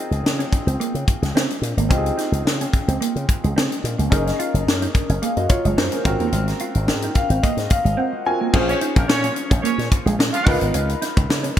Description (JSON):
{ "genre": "polished 1980s jazz-funk pop", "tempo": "109 BPM", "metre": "4/4", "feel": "swing 54% on 16ths", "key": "Db major", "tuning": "A4 = 440 Hz", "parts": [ { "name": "warm concert grand piano", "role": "accompaniment", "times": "0.0-11.6 s", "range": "C4 to Ab5", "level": "-25 LUFS", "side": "left 1 dB", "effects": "wide subtle chorus" }, { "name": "mellow electric guitar", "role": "riff", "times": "0.0-11.6 s", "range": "Ab3 to F4", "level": "-27 LUFS", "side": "right 4 dB", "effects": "analog chorus" }, { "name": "slap bass with an envelope filter", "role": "bass", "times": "0.1-11.5 s", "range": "Gb1 to Db3", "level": "-22 LUFS", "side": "equal", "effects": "none" }, { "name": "tight funk drum kit", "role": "drums", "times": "0.1-11.6 s", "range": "crash cymbal, hi-hat, kick drum, snare drum", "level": "-20 LUFS", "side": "equal", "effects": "gated reverb" }, { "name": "warm horn section", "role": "second line", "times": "8.7-10.6 s", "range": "Bb3 to F5", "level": "-25 LUFS", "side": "right 2 dB", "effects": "none" } ], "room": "light reverb, small room ambience", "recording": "bright 1980s-style digital production", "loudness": "-17 LUFS", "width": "side -11 dB against mid", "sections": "0.0-8.5 A section; 8.5-11.6 B section", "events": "grand piano fill 6.9-8.5", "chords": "0.0 Dbmaj9; 4.1 Gb6; 6.1 Ab13; 8.5 Bbm7; 10.5 Db13", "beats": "0.25 0.80 1.35 | 1.91 2.46 3.01 3.56 | 4.12 4.67 5.22 5.78 | 6.33 6.88 7.43 7.99 | 8.54 9.09 9.64 10.20 | 10.75 11.30" }